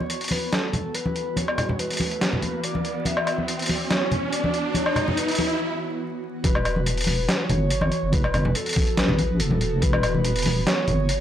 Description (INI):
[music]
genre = deep dubstep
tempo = 142 BPM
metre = 4/4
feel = half-time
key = unclear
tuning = A4 = 440 Hz
[part]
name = breathy flute-like synth lead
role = melody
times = 0.0-11.2 s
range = A4 to E5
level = -29 LUFS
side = equal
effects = wide subtle chorus, dub echo
[part]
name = granular cloud pad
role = sustained chords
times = 0.0-11.2 s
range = E3 to F#4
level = -32 LUFS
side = right 1 dB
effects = built-in reverb
[part]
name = congas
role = percussion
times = 0.0-11.0 s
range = none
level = -28 LUFS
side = left 1 dB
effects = none
[part]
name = riser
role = sound effects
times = 1.5-5.6 s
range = none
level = -29 LUFS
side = right 1 dB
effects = none
[part]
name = trip hop sampler-style drum kit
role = drums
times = 0.1-11.2 s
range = hi-hat, snare drum, woodblock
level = -26 LUFS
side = equal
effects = none
[part]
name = deep soft wobble bass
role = bass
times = 6.4-11.2 s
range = E1 to A1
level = -24 LUFS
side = equal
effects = chorus
[part]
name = electronic kick drum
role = drums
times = 6.4-9.9 s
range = none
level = -24 LUFS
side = equal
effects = none
[sound]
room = light reverb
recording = dry, gritty hardware recording, vinyl crackle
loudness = -21 LUFS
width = side -10 dB against mid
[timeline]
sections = 0.0-6.4 A section; 6.4-11.2 B section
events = build-up 0.0-6.4; riser 1.5-5.6; break 5.6-6.4; drop 6.4-11.2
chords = 0.0 E5; 6.4 Em